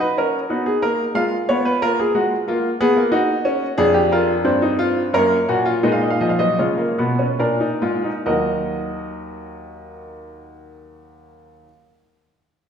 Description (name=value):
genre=classical, baroque-style 4-part fugue for grand piano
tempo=65-92 BPM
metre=3/4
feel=straight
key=Eb minor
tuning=A4 = 440 Hz
part: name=warm baby grand piano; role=solo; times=0.0-11.7 s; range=Eb2 to F5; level=-17 LUFS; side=equal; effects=none
room=wet recital hall reverb, RT60 1.9 s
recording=recorded in a church or concert hall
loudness=-16 LUFS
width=side -7 dB against mid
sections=0.0-8.3 A section; 8.3-12.7 B section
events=slowing down 2.8-8.3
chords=0.0 Ebm; 1.2 Fdim/Ab; 1.8 Bb5; 3.1 Ebm; 3.8 Ddim/F; 5.1 Gbmaj7; 5.8 Bb7sus4; 7.4 Bb7; 8.3 Ebm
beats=0.51 1.17 | 1.82 2.47 3.12 | 3.78 4.45 5.13 | 5.84 6.59 7.40 | 8.27 9.18 10.10 | 11.01